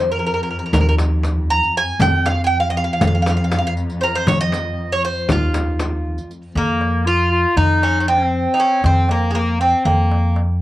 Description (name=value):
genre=Turkish makam ensemble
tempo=237 BPM (eighths)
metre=9/8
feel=straight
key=F makam ussak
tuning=A4 = 439 Hz
part: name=Greek bouzouki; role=melody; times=0.0-10.4 s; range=Ab3 to Bb5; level=-19 LUFS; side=right 1 dB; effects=cassette tape
part: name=dark studio cello section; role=drone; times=0.0-6.6 s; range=F2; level=-26 LUFS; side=left 1 dB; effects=cassette tape
part: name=upright bass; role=bass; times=0.7-10.6 s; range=Eb2 to F3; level=-18 LUFS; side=equal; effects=none
part: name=darbuka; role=percussion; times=0.7-10.5 s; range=none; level=-25 LUFS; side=left 1 dB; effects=none
part: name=frame drum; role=percussion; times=0.7-5.9 s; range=none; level=-24 LUFS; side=left 2 dB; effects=none
part: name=riq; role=percussion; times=0.7-6.4 s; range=none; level=-32 LUFS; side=right 4 dB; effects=none
part: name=clear clarinet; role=second line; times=6.6-10.4 s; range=Bb3 to F4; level=-20 LUFS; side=left 2 dB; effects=cassette tape
room=light reverb, small room ambience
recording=home recording on cassette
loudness=-15 LUFS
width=side -15 dB against mid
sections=0.0-6.6 A section; 6.6-10.6 B section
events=none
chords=none